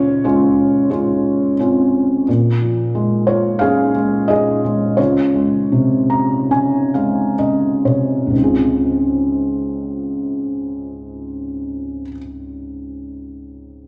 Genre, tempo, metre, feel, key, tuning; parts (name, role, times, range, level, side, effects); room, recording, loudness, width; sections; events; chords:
classical, lyrical solo piano; 60-93 BPM; 4/4; rubato; Db major; A4 = 442 Hz
felt-muted upright piano; solo; 0.0-13.9 s; Db2 to Bb5; -18 LUFS; equal
wet recital hall reverb, RT60 1.6 s; -17 LUFS; mono
0.0-2.3 A section; 2.3-8.3 B section; 8.3-12.3 C section
slowing down 2.3-8.3; felt piano fill 5.7-8.3
0.0 Dbmaj7; 2.3 Bbm7; 5.0 Dbmaj7